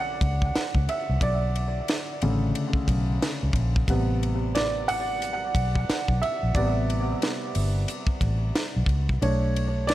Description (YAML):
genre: R&B, neo-soul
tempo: 90 BPM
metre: 4/4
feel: swing 62% on 16ths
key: B phrygian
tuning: A4 = 439 Hz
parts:
  - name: warm upright piano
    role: accompaniment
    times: 0.0-9.9 s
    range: C3 to F#5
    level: -28 LUFS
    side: right 1 dB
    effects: dub echo
  - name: vintage muted fingered electric bass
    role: bass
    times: 0.0-9.9 s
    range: G1 to C#2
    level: -25 LUFS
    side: equal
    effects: none
  - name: tight funk drum kit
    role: drums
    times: 0.2-9.9 s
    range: hi-hat, kick drum, ride cymbal, snare drum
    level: -28 LUFS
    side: equal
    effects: none
room: light reverb, small room ambience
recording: echo-heavy mix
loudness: -23 LUFS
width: side -14 dB against mid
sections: 0.0-9.9 A section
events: upright piano solo 0.0-9.9; kick muted 9.2-9.9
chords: 0.0 Bm9; 3.9 Am9; 9.2 Bm9